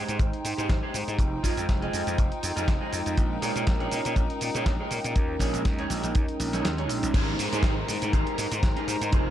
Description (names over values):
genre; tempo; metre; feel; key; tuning
nu-disco, nu disco; 121 BPM; 4/4; swing 55% on 16ths; Ab major; A4 = 441 Hz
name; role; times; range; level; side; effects
warm analog pad; accompaniment; 0.0-9.3 s; Ab3 to C6; -33 LUFS; right 1 dB; chorus, analog delay
warm chamber violin section; sustained chords; 0.0-9.3 s; Eb4 to Bb5; -35 LUFS; left 2 dB; sidechain pumping
electric guitar at the edge of break-up; riff; 0.0-9.3 s; Eb4 to Eb5; -34 LUFS; right 3 dB; wide subtle chorus, analog delay
gritty slap bass; bass; 0.0-9.3 s; F1 to Bb2; -31 LUFS; equal; overdrive
dusty soul sampler-style drum kit; drums; 0.1-9.2 s; crash cymbal, hi-hat, shaker, snare drum; -34 LUFS; right 1 dB; none
kick drum; drums; 0.2-9.2 s; none; -25 LUFS; equal; none
downlifter; sound effects; 7.1-9.3 s; none; -36 LUFS; equal; none
room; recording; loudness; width
light reverb, studio reverb; none; -24 LUFS; side -11 dB against mid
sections
0.0-7.1 A section; 7.1-9.3 B section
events
kick drops out 6.6-7.1; drop 7.1-9.3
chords
0.0 Abmaj7; 1.2 Fm7; 3.2 Bbm7; 5.2 Eb7sus4; 7.1 Abmaj7